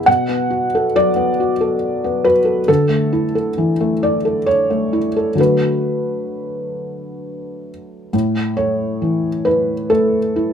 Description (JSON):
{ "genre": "neoclassical minimalist piano", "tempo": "67 BPM", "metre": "3/4", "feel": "rubato", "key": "B minor", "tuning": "A4 = 440 Hz", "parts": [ { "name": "felt-muted upright piano", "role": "solo", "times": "0.0-10.5 s", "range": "A2 to F#5", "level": "-15 LUFS", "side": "equal", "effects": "none" } ], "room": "moderate studio reverb, RT60 0.7 s", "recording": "none", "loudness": "-15 LUFS", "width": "side -8 dB against mid", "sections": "0.0-8.1 A section; 8.1-10.5 B section", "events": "none", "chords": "0.1 Bm7; 2.7 Dsus2; 5.4 Bm7/D; 8.1 A" }